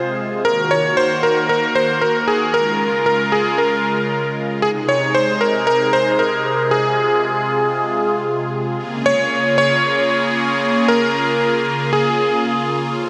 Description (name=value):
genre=synthwave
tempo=115 BPM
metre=4/4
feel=straight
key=Bb minor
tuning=A4 = 442 Hz
part: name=bright electric grand piano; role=melody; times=0.0-12.7 s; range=Ab4 to Db5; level=-19 LUFS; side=equal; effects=vintage 12-bit sampler grit, digital delay
part: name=phased analog pad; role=sustained chords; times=0.0-13.1 s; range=C3 to Bb4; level=-22 LUFS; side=equal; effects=phaser, chorus
room=wet lush hall reverb, RT60 2.4 s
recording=bright 1980s-style digital production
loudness=-17 LUFS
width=mono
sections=0.0-8.8 A section; 8.8-13.1 B section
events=none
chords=0.5 Ebm; 2.6 Bbm7; 4.6 Ab; 6.7 Fm; 8.8 Bbm7